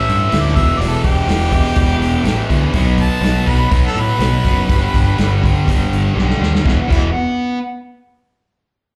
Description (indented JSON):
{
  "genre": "garage rock duo or trio",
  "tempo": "123 BPM",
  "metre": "4/4",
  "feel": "straight",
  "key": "E minor",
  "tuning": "A4 = 440 Hz",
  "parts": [
    { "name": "clear harmonica", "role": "melody", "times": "0.0-5.4 s", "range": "G4 to A5", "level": "-23 LUFS", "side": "equal", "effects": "overdrive, slapback echo" },
    { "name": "fuzz guitar", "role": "riff", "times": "0.0-7.6 s", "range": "E2 to B3", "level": "-20 LUFS", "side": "equal", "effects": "distortion, slapback echo" },
    { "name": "fuzz picked electric bass", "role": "bass", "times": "0.1-7.1 s", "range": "E1 to A2", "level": "-19 LUFS", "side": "equal", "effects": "overdrive" },
    { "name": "vintage drum kit", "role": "drums", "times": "0.1-7.0 s", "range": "crash cymbal, hi-hat, kick drum, snare drum", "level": "-21 LUFS", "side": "equal", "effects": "none" }
  ],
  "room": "little or no reverb",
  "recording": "live gig heard through the venue's PA, club reverb",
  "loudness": "-15 LUFS",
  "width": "mono",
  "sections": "0.0-6.6 A section; 6.6-8.6 B section",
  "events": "harmonica solo 0.0-6.6; drum fill 6.2-6.6",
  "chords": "0.0 A5; 0.6 Em; 2.7 B5; 4.7 G; 6.6 E5",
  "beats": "0.31 | 0.80 1.28 1.77 2.25 | 2.74 3.23 3.71 4.20 | 4.69 5.17 5.66 6.15 | 6.64 7.13"
}